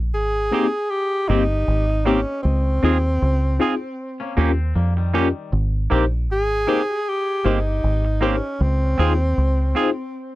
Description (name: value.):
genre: reggae.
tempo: 78 BPM.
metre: 4/4.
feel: swing 56% on 16ths.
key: Ab major.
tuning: A4 = 439 Hz.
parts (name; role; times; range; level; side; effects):
deep dub fingered electric bass; bass; 0.0-9.7 s; G1 to F2; -20 LUFS; equal; none.
warm tenor saxophone; melody; 0.1-10.2 s; C4 to Ab4; -23 LUFS; equal; tape echo.
tine electric piano; accompaniment; 0.5-9.9 s; Bb3 to C5; -21 LUFS; left 4 dB; medium tremolo.
clean electric guitar; stabs; 0.5-9.9 s; Bb3 to Ab4; -22 LUFS; right 5 dB; none.
twangy electric guitar; arpeggios; 4.2-5.5 s; Eb3 to Db4; -32 LUFS; left 5 dB; none.
room: light reverb.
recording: dry, close 1970s-style studio recording.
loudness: -18 LUFS.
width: side -17 dB against mid.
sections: 0.0-10.4 A section.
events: none.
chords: 0.0 Abmaj9; 2.4 Dbmaj7; 4.0 Eb7; 5.5 Abmaj9; 8.6 Dbmaj7.